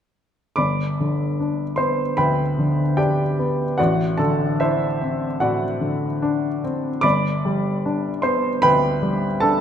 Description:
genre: classical, romantic character piece for solo piano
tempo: 75 BPM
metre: 4/4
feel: rubato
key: G major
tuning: A4 = 440 Hz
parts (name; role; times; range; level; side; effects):
- warm baby grand piano; solo; 0.6-9.6 s; G1 to D6; -18 LUFS; equal; none
room: moderate recital hall reverb, RT60 1.5 s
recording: none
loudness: -19 LUFS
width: side -8 dB against mid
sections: 0.6-9.6 A section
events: none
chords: 0.6 G; 3.8 D7/A; 7.0 G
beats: | 0.57 1.39 2.17 2.98 | 3.78 4.60 5.41 6.21 | 7.04 7.84 8.63 9.42

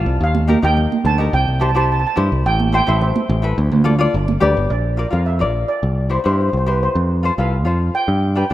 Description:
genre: calypso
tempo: 107 BPM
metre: 4/4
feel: straight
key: C major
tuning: A4 = 438 Hz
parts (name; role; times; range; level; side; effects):
- tenor ukulele; accompaniment; 0.0-8.5 s; D4 to F5; -22 LUFS; left 4 dB; none
- picked electric bass; bass; 0.0-8.5 s; G1 to G2; -17 LUFS; equal; none
- steel pan; melody; 0.2-8.5 s; B4 to A5; -22 LUFS; right 3 dB; none
- congas; percussion; 0.3-4.6 s; none; -22 LUFS; right 4 dB; none
room: light reverb, small room ambience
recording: rough home demo mix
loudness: -15 LUFS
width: side -14 dB against mid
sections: 0.0-4.7 A section; 4.7-8.5 B section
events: none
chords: 0.2 Ebmaj7; 1.3 C; 2.5 Am; 3.6 Dm; 4.1 G; 4.7 Bb; 5.8 C; 7.0 F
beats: | 0.21 0.77 1.33 1.89 | 2.45 3.02 3.58 4.14 | 4.70 5.26 5.83 6.39 | 6.95 7.52 8.08

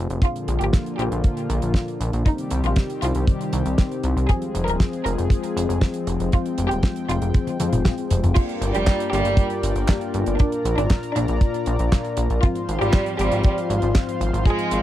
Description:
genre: italo disco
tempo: 118 BPM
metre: 4/4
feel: straight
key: F dorian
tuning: A4 = 439 Hz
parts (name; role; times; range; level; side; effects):
- warm analog pad; sustained chords; 0.0-14.8 s; D3 to C6; -28 LUFS; left 1 dB; chorus
- mellow synth brass; stabs; 0.0-14.8 s; G2 to D5; -29 LUFS; left 4 dB; chorus, tape echo
- chorused synth bass; bass; 0.0-14.8 s; Eb1 to F2; -24 LUFS; equal; none
- damped 70s drum kit; drums; 0.1-14.8 s; crash cymbal, handclaps, hi-hat, snare drum, toms; -26 LUFS; right 1 dB; none
- rich chamber violin section; melody; 0.2-14.8 s; G3 to Bb4; -26 LUFS; right 2 dB; tape echo
- kick drum; drums; 0.2-14.6 s; none; -18 LUFS; equal; none
room: little or no reverb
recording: dry, close 1970s-style studio recording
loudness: -19 LUFS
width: side -13 dB against mid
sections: 0.0-8.4 A section; 8.4-14.8 B section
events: filter sweep on analog polysynth 0.0-8.4; drum fill 7.3-8.4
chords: 0.2 Bb; 2.3 Cm; 4.3 Fm; 8.4 Gm7; 10.4 Bb; 12.4 Fm/Ab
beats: | 0.23 0.73 1.24 1.75 | 2.26 2.77 3.28 3.79 | 4.29 4.80 5.31 5.82 | 6.33 6.84 7.34 7.85 | 8.36 8.87 9.38 9.89 | 10.39 10.90 11.41 11.92 | 12.43 12.94 13.45 13.96 | 14.46

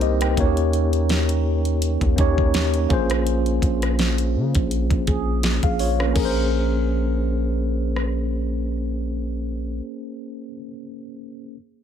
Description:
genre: contemporary R&B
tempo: 83 BPM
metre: 4/4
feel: swing 54% on 16ths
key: Bb dorian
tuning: A4 = 440 Hz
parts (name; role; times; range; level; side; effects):
- mellow tine electric piano; accompaniment; 0.0-11.6 s; Bb3 to G5; -24 LUFS; equal; medium stereo tremolo
- long sustained 808-style bass; bass; 0.0-9.8 s; Bb1 to Db3; -22 LUFS; equal; none
- smooth R&B drum kit; drums; 0.0-8.1 s; crash cymbal, hi-hat, kick drum, rim click, snare drum; -24 LUFS; equal; none
- handpan; texture; 0.0-0.6, 5.1-10.5 s; G4 to Bb4; -32 LUFS; left 2 dB; ping-pong delay
room: digital ambience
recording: none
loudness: -19 LUFS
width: side -9 dB against mid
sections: 0.0-6.2 A section; 6.2-9.0 B section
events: none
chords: 0.4 Eb7; 2.9 Bbm9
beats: | 0.37 1.10 1.82 2.54 | 3.27 3.99 4.71 5.43 | 6.16 6.88 7.60 8.32

